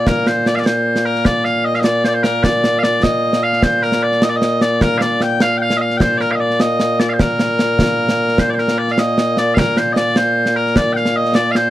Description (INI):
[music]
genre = scottish traditional, Scottish pipe music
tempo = 101 BPM (dotted quarters)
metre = 6/8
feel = straight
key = Bb major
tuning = A4 = 440 Hz
[part]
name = loud bright bagpipes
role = melody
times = 0.0-11.7 s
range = Bb2 to G5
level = -14 LUFS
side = equal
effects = none
[part]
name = concert snare drum and concert bass drum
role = drums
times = 0.1-11.6 s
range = none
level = -18 LUFS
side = right 1 dB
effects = none
[sound]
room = little or no reverb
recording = dry, close 1970s-style studio recording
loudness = -13 LUFS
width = side -14 dB against mid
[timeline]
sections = 0.0-8.4 A section; 8.4-11.7 A section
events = none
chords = none